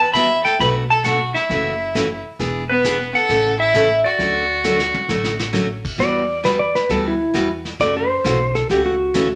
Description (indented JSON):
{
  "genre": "country, western swing",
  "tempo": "133 BPM",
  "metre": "4/4",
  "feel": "swing 68% on 8ths",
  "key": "unclear",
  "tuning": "A4 = 439 Hz",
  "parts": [
    { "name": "clean lap steel guitar", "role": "melody", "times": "0.0-5.5 s", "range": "B4 to B5", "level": "-20 LUFS", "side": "equal", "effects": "none" },
    { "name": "clear fiddle", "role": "second line", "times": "0.0-5.5 s", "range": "B3 to E5", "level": "-24 LUFS", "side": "equal", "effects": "none" },
    { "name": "upright bass", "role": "bass", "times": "0.0-9.4 s", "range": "E1 to F#2", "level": "-31 LUFS", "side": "equal", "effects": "none" },
    { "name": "picked steel-string acoustic guitar", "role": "accompaniment", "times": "0.1-9.3 s", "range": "B2 to A4", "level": "-24 LUFS", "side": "equal", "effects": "none" },
    { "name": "vintage brush drum kit", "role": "drums", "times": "0.1-9.4 s", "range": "brushed snare drum, crash cymbal, hi-hat, kick drum, snare drum, toms", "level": "-31 LUFS", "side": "equal", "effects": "none" },
    { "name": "clean lap steel guitar", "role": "second line", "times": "6.0-9.4 s", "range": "E4 to D5", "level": "-20 LUFS", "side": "equal", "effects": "none" }
  ],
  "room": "wet studio reverb, RT60 0.8 s",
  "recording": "none",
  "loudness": "-18 LUFS",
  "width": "mono",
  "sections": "0.0-6.0 A section; 6.0-9.4 B section",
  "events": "drum fill 4.6-5.5; electric slide guitar solo 6.0-9.4",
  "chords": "0.0 Emadd9; 0.6 Bm7; 1.5 F#m7; 2.4 E7; 3.3 A; 4.2 Dmaj7; 6.0 Emadd9; 7.8 F#m7"
}